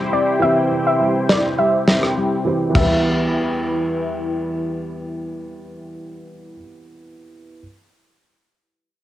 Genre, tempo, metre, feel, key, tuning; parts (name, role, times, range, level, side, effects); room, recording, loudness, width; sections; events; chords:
dancehall; 103 BPM; 4/4; straight; E minor; A4 = 439 Hz
warm grand piano; accompaniment; 0.0-7.6 s; E3 to C5; -24 LUFS; right 3 dB; sidechain pumping, low-pass filter, cassette tape
lush unison pad; sustained chords; 0.0-5.8 s; E3 to G5; -25 LUFS; equal; chorus, phaser, sidechain pumping, low-pass filter, cassette tape
nylon-string guitar; arpeggios; 0.0-6.6 s; C3 to E4; -26 LUFS; left 4 dB; low-pass filter, cassette tape, tape echo
glassy wavetable pluck; melody; 0.1-4.5 s; D5 to E5; -20 LUFS; equal; chorus, low-pass filter, cassette tape
loose indie drum kit; drums; 1.3-2.9 s; crash cymbal, kick drum, rim click, snare drum, toms; -20 LUFS; equal; cassette tape
moderate spring reverb, RT60 1.9 s, studio ambience; home recording on cassette; -16 LUFS; side -13 dB against mid
0.0-2.8 A section; 2.8-5.1 B section
filter sweep 0.0-2.8
0.0 C; 2.8 Em